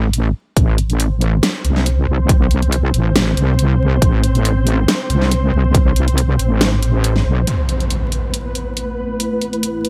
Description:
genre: deep dubstep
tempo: 139 BPM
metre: 4/4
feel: swing 54% on 16ths, half-time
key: A minor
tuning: A4 = 440 Hz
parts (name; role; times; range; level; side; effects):
- wobble bass; bass; 0.0-7.5 s; A1 to C2; -17 LUFS; equal; chorus
- dubstep drum kit; drums; 0.1-9.9 s; hi-hat, snare drum; -22 LUFS; equal; none
- electronic kick drum; drums; 0.6-5.8 s; none; -16 LUFS; equal; none
- flickering grainy texture; texture; 1.1-9.9 s; B3 to C5; -27 LUFS; equal; built-in reverb
- granular cloud pad; sustained chords; 8.5-9.9 s; A3 to B4; -25 LUFS; equal; built-in reverb
- impact; sound effects; 7.5-9.2 s; none; -24 LUFS; equal; none
room: light reverb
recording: vinyl crackle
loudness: -16 LUFS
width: mono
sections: 0.0-7.5 A section; 7.5-9.9 B section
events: impact 7.5-9.2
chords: 0.0 Am; 7.5 Asus2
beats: 0.14 | 0.57 1.00 1.43 1.86 | 2.29 2.72 3.16 3.59 | 4.02 4.45 4.88 5.31 | 5.75 6.18 6.61 7.04 | 7.47 7.90 8.34 8.77 | 9.20 9.63

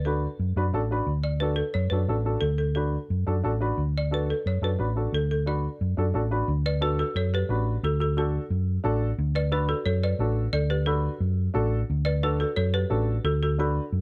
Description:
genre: latin, cumbia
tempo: 178 BPM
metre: 4/4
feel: straight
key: D major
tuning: A4 = 440 Hz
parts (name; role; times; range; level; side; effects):
- hollow-body short-scale fingered electric bass; bass; 0.0-14.0 s; A1 to F#2; -28 LUFS; equal; none
- folk marimba with hard mallets; melody; 0.1-14.0 s; F#4 to D5; -32 LUFS; equal; plate reverb
- warm upright piano; accompaniment; 0.1-13.8 s; D4 to B4; -32 LUFS; equal; none
room: light reverb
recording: dark, warm production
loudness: -26 LUFS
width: mono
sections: 0.0-6.5 A section; 6.5-14.0 B section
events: none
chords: 0.0 D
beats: 0.06 0.40 0.73 | 1.07 1.41 1.75 2.09 | 2.42 2.76 3.10 3.44 | 3.78 4.11 4.45 4.79 | 5.13 5.47 5.80 6.14 | 6.48 6.82 7.16 7.50 | 7.83 8.17 8.51 8.85 | 9.18 9.52 9.86 10.20 | 10.54 10.87 11.21 11.55 | 11.89 12.23 12.56 12.90 | 13.24 13.58 13.92

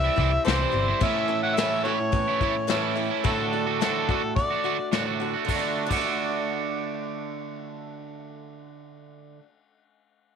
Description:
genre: folk rock and heartland rock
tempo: 107 BPM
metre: 4/4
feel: straight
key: D major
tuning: A4 = 440 Hz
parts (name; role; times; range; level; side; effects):
- overdriven harmonica; melody; 0.0-4.9 s; E4 to F#5; -27 LUFS; equal; none
- picked swing-style acoustic guitar; accompaniment; 0.0-9.5 s; A2 to F#4; -32 LUFS; left 11 dB; none
- electric guitar at the edge of break-up; riff; 0.0-9.4 s; A2 to F#4; -28 LUFS; right 12 dB; analog chorus
- hollow-body short-scale fingered electric bass; bass; 0.0-0.9 s; G1 to C2; -26 LUFS; equal; none
- soft brush drum kit; drums; 0.2-6.1 s; hi-hat, kick drum, ride cymbal, snare drum; -29 LUFS; left 4 dB; none
room: moderate spring reverb, RT60 1.7 s, studio ambience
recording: 1960s-style stereo with parts hard left and right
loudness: -23 LUFS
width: side -7 dB against mid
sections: 0.0-5.5 A section; 5.5-7.7 B section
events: none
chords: 0.0 C; 1.0 A; 3.3 D/A; 5.5 D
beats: 0.45 | 1.01 1.57 2.13 2.69 | 3.25 3.81 4.37 4.93 | 5.49 6.05 6.61 7.17

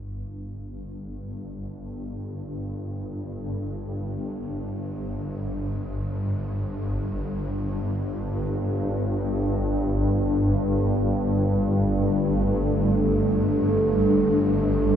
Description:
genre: dark ambient drone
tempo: free time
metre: none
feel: none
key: unclear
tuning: A4 = 440 Hz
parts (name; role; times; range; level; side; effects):
- swarming drone; drone; 0.0-15.0 s; G1 to G2; -25 LUFS; equal; built-in reverb
- dark analog pad; sustained chords; 10.4-15.0 s; G3 to A4; -23 LUFS; right 1 dB; chorus
room: wet cathedral reverb, RT60 4.9 s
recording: nothing above 10.5 kHz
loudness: -23 LUFS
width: side -9 dB against mid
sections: 0.0-15.0 A section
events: fade-in on synth drone 0.0-15.0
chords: 0.0 G5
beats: free time

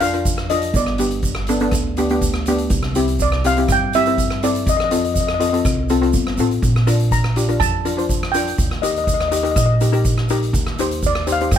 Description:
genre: calypso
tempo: 123 BPM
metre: 4/4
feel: straight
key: Bb major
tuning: A4 = 439 Hz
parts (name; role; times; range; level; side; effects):
- steel pan; melody; 0.0-11.6 s; D5 to Bb5; -20 LUFS; equal; plate reverb
- steel pan; accompaniment; 0.0-11.6 s; B3 to C5; -21 LUFS; left 3 dB; none
- upright bass; bass; 0.0-11.6 s; G1 to G2; -21 LUFS; right 1 dB; none
- street-band drum kit; drums; 0.0-11.6 s; hi-hat, kick drum, rim click; -23 LUFS; equal; none
- tube shaker; percussion; 0.0-11.6 s; none; -30 LUFS; right 4 dB; none
room: light reverb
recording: none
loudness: -16 LUFS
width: side -9 dB against mid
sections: 0.0-11.6 A section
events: none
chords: 0.0 Bb; 0.8 G; 2.7 C; 4.7 F; 6.6 Bbmaj7; 8.6 Eb; 10.5 Cm/Eb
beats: 0.26 | 0.75 1.24 1.73 2.22 | 2.71 3.20 3.69 4.18 | 4.67 5.16 5.65 6.14 | 6.63 7.12 7.60 8.09 | 8.58 9.07 9.56 10.05 | 10.54 11.03 11.52

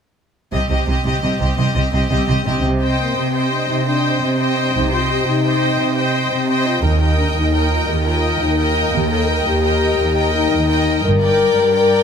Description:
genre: cinematic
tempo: 114 BPM (dotted quarters)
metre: 12/8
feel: straight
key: unclear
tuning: A4 = 440 Hz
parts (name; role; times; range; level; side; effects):
- clear studio violin section; melody; 0.5-12.0 s; Eb5 to G5; -24 LUFS; left 2 dB; none
- clear symphonic violin section; second line; 0.5-12.0 s; G4 to Eb5; -24 LUFS; equal; none
- rich symphonic viola section; accompaniment; 0.5-12.0 s; C4 to C5; -23 LUFS; left 1 dB; none
- clear studio double bass section; bass; 0.5-11.4 s; G1 to Eb2; -20 LUFS; right 2 dB; none
- rich symphonic cello section; bass; 0.5-12.0 s; Eb2 to C3; -20 LUFS; right 2 dB; none
- mellow French horn section; sustained chords; 2.1-12.0 s; G3 to Bb4; -20 LUFS; left 4 dB; none
room: moderate scoring stage reverb, RT60 1.9 s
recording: none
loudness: -15 LUFS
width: side -7 dB against mid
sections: 0.5-2.6 A section; 2.6-12.0 B section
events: none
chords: 0.5 Cm; 6.8 Eb; 11.0 Gm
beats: | 0.53 1.05 1.58 2.11 | 2.64 3.17 3.69 4.22 | 4.75 5.27 5.79 6.32 | 6.84 7.37 7.89 8.41 | 8.94 9.46 9.98 10.51 | 11.04 11.56

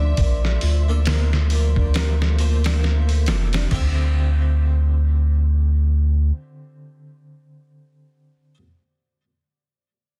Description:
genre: trip hop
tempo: 68 BPM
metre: 4/4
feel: swing 59% on 16ths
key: D minor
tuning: A4 = 440 Hz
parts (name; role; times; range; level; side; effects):
- pure breathy sine lead; melody; 0.0-1.0 s; D5; -37 LUFS; equal; chorus, dub echo
- bright symphonic string section; sustained chords; 0.0-3.7 s; F3 to E5; -40 LUFS; equal; none
- nylon-string guitar; arpeggios; 0.0-4.1 s; C4 to Bb4; -39 LUFS; equal; vintage 12-bit sampler grit, tape echo
- soft dub sub bass; bass; 0.0-6.3 s; F1 to D2; -20 LUFS; equal; none
- wind-like tuned noise texture; texture; 0.0-3.7 s; C5; -46 LUFS; equal; built-in reverb
- trip hop sampler-style drum kit; drums; 0.2-4.0 s; crash cymbal, hi-hat, kick drum, snare drum; -27 LUFS; equal; soft clipping on snare
- harpsichord; accompaniment; 0.9-8.6 s; D3 to A5; -36 LUFS; equal; tremolo, tape echo
room: digital ambience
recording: dense, heavily limited modern master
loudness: -19 LUFS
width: mono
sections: 0.0-3.7 A section; 3.7-7.2 B section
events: none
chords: 0.0 Bbmaj7; 3.7 Dm11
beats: | 0.18 1.06 1.95 2.83 | 3.71 4.59 5.47 6.36

